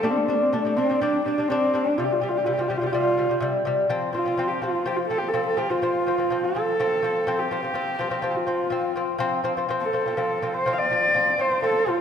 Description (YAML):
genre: mongolian traditional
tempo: 124 BPM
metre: 4/4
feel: straight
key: F gong mode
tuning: A4 = 440 Hz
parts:
  - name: dark horsehead fiddle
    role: melody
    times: 0.0-12.0 s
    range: A3 to F5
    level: -24 LUFS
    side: right 1 dB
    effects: none
  - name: lute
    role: arpeggios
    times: 0.0-12.0 s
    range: C3 to D4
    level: -24 LUFS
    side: left 2 dB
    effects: none
room: wet concert hall reverb, RT60 1.9 s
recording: none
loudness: -21 LUFS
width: side -8 dB against mid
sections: 0.0-3.9 A section; 3.9-12.0 B section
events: none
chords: 0.0 G5; 2.0 C5; 3.9 F5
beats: | 0.03 0.52 1.00 1.48 | 1.97 2.45 2.93 3.42 | 3.90 4.38 4.87 5.35 | 5.83 6.32 6.80 7.28 | 7.77 8.25 8.73 9.21 | 9.70 10.18 10.66 11.15 | 11.63